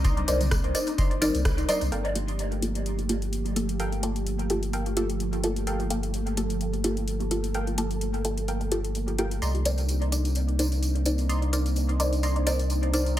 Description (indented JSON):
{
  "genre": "dub techno",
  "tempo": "128 BPM",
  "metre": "4/4",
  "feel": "swing 55% on 16ths",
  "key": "G minor",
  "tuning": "A4 = 441 Hz",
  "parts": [
    { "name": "airy breathy pad", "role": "sustained chords", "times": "0.0-13.2 s", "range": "F3 to A4", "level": "-32 LUFS", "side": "equal", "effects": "chorus, sidechain pumping" },
    { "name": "wavetable chord stab", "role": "riff", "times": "0.0-13.2 s", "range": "A4 to C6", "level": "-38 LUFS", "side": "right 1 dB", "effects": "cassette tape, sidechain pumping, dub echo" },
    { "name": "warm sub bass", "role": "bass", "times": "0.0-13.2 s", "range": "G1 to C2", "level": "-28 LUFS", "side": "equal", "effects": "sidechain pumping" },
    { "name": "booming analog drum machine", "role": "drums", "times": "0.0-13.2 s", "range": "hi-hat, rim click", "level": "-35 LUFS", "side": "left 2 dB", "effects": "none" },
    { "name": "electronic kick drum", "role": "drums", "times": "0.0-1.6 s", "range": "none", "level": "-25 LUFS", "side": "equal", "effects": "none" },
    { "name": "tambourine", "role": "percussion", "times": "0.0-1.9, 9.4-13.2 s", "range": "none", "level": "-36 LUFS", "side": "right 2 dB", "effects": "none" },
    { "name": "congas", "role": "percussion", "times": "0.2-1.8 s", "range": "none", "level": "-39 LUFS", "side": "left 3 dB", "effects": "overdrive, sidechain pumping on perc, dub echo" },
    { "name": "filtered dub chord stab", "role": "stabs", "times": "0.3-13.1 s", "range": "Bb3 to D5", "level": "-30 LUFS", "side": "equal", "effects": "chorus, phaser, sidechain pumping, dub echo" }
  ],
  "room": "light reverb",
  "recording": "none",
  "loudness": "-24 LUFS",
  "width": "side -13 dB against mid",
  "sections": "0.0-1.9 A section; 1.9-13.2 B section",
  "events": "band accent 1.5; filter sweep on synth stab 1.9-13.2; filter sweep on analog synth pad 1.9-13.2",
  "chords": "0.0 Cm9; 1.9 Gm9; 9.4 Cm9"
}